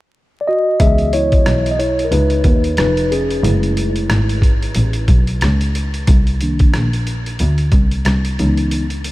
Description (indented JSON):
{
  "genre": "hip hop, jazz-hop",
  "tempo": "91 BPM",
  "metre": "4/4",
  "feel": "swing 57% on 16ths",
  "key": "C# minor",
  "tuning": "A4 = 439 Hz",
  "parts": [
    { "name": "mellow tine electric piano", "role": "accompaniment", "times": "0.4-8.8 s", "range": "Eb3 to E5", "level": "-18 LUFS", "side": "equal", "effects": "medium stereo tremolo" },
    { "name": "clear double bass", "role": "bass", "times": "0.8-9.1 s", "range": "E#1 to D#2", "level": "-17 LUFS", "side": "equal", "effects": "none" },
    { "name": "boom bap sampler-style drum kit", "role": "drums", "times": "0.8-9.1 s", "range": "hi-hat, kick drum, rim click", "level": "-17 LUFS", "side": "equal", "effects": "none" }
  ],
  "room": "light reverb",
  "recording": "vinyl crackle",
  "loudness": "-13 LUFS",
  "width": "side -18 dB against mid",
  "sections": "0.8-9.1 A section",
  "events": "tine electric piano solo 0.8-9.1",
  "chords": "0.0 N.C.; 0.8 C#m9; 3.4 F#m9; 6.1 Cm9; 8.4 C#m9"
}